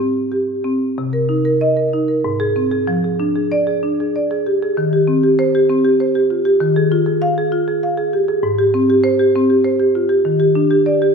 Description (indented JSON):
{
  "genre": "classical, contemporary piece for solo marimba",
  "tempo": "88-101 BPM",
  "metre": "3/4",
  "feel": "rubato",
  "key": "unclear",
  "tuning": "A4 = 442 Hz",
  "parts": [
    { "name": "marimba with medium hard mallets", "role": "solo", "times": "0.0-11.1 s", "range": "Ab2 to F5", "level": "-14 LUFS", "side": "equal", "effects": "none" }
  ],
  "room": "moderate scoring stage reverb, RT60 1.6 s",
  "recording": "minimal, uncompressed stereo recording",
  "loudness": "-14 LUFS",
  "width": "side -5 dB against mid",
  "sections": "1.0-11.1 A section",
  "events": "none",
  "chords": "0.0 Abmaj7; 1.0 Cm7; 2.3 Ab; 2.9 Fm6; 4.8 Eb6; 6.6 Fm7/Eb; 8.4 Abmaj7; 10.2 Ebmaj7"
}